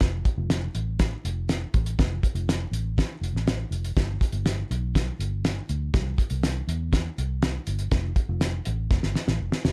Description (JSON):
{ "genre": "uptempo 1960s-style soul", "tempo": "122 BPM", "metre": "4/4", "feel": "straight", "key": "unclear", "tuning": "A4 = 437 Hz", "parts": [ { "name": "vintage muted fingered electric bass", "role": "bass", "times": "0.0-9.7 s", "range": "F1 to E2", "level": "-30 LUFS", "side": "equal", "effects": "none" }, { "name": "cloth-damped thuddy drum kit", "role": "drums", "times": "0.0-9.7 s", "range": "hi-hat, kick drum, snare drum", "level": "-27 LUFS", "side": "equal", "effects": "none" } ], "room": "light reverb", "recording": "none", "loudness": "-27 LUFS", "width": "mono", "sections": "0.0-9.7 A section", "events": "drum fill 8.9-9.7", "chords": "none" }